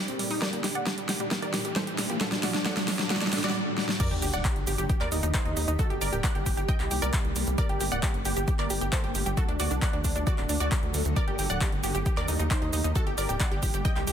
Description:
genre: uplifting trance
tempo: 134 BPM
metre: 4/4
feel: straight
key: G harmonic minor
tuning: A4 = 441 Hz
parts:
  - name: wide unison pluck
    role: melody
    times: 0.0-14.1 s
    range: D4 to G5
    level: -33 LUFS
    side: right 1 dB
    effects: sidechain pumping, tape echo
  - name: shimmering ambient pad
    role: sustained chords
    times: 0.0-14.1 s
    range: A2 to A4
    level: -35 LUFS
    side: equal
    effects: chorus, built-in reverb, sidechain pumping
  - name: analog pluck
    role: arpeggios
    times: 0.0-3.4 s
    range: F#3 to A4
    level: -37 LUFS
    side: right 1 dB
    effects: chorus, sidechain pumping, tape echo
  - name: riser and sub drop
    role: sound effects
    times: 0.1-5.8 s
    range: none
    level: -35 LUFS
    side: right 1 dB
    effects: none
  - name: big-room dance drum kit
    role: drums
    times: 0.1-14.1 s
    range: crash cymbal, handclaps, hi-hat, shaker, snare drum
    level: -31 LUFS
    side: equal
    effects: none
  - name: electronic kick drum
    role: drums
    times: 0.4-13.9 s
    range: none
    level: -28 LUFS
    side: equal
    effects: overdrive, high-pass filter on kick, high-pass filter on room
  - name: wide unison pluck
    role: second line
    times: 4.0-14.1 s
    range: D5 to G6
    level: -38 LUFS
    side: equal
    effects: sidechain pumping
  - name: tight sequencer bass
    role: bass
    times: 4.1-14.1 s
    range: D1 to Eb2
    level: -30 LUFS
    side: equal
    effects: sidechain pumping
room: light reverb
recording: dense, heavily limited modern master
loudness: -25 LUFS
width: side -9 dB against mid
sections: 0.0-4.0 A section; 4.0-14.1 B section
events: build-up 0.0-4.0; drum fill 0.0-3.6, 3.8; filter sweep on synth pluck 0.0-4.0; riser 0.1-3.6; drop 4.0-14.1; impact 4.0-5.8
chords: 0.4 Gmadd9; 2.2 D; 4.0 Gmadd9; 4.9 Eb; 5.8 Gmadd9; 6.7 Cm7; 7.6 Gmadd9; 9.4 D; 11.2 Gmadd9; 12.1 Eb; 13.0 Gmadd9

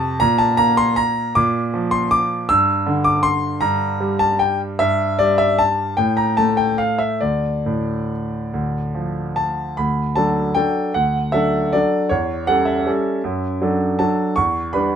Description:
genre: classical, piano waltz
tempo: 130-167 BPM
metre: 3/4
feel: rubato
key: D minor, D major from 9.8 s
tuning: A4 = 441 Hz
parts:
  - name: bright concert grand piano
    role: solo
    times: 0.0-15.0 s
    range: D2 to E6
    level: -16 LUFS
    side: equal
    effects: none
room: light reverb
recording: minimal, uncompressed stereo recording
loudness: -16 LUFS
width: side -8 dB against mid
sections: 0.0-9.8 A section; 9.8-15.0 B section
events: none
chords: 0.2 Bb; 2.5 Gm; 4.8 N.C.; 7.2 Dm; 9.8 D; 12.1 A7/E; 13.2 D/F#; 14.4 Em7

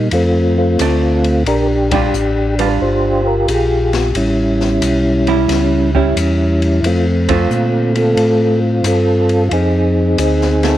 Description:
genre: soul jazz organ trio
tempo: 90 BPM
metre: 4/4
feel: swing 67% on 8ths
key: unclear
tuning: A4 = 440 Hz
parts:
  - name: percussive tonewheel organ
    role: melody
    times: 0.0-10.8 s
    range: G3 to C5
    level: -14 LUFS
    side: equal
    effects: slow rotary speaker, chorus vibrato
  - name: mellow tonewheel organ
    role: bass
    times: 0.0-10.8 s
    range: G1 to Bb2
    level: -17 LUFS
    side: equal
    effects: slow rotary speaker
  - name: open jazz drum kit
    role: drums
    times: 0.1-10.8 s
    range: hi-hat, kick drum, ride cymbal, snare drum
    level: -24 LUFS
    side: left 4 dB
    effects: none
  - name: vintage hollow-body jazz guitar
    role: accompaniment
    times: 0.8-10.8 s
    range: D3 to F4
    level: -20 LUFS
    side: right 10 dB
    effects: none
room: light reverb, small room ambience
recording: 1960s-style stereo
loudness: -12 LUFS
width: side -13 dB against mid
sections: 0.0-10.8 A section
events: band accent 1.8-2.1, 7.2-7.5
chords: 0.1 F6; 1.5 Bb6; 4.2 A7; 6.8 Dm7; 9.5 F7(no3)

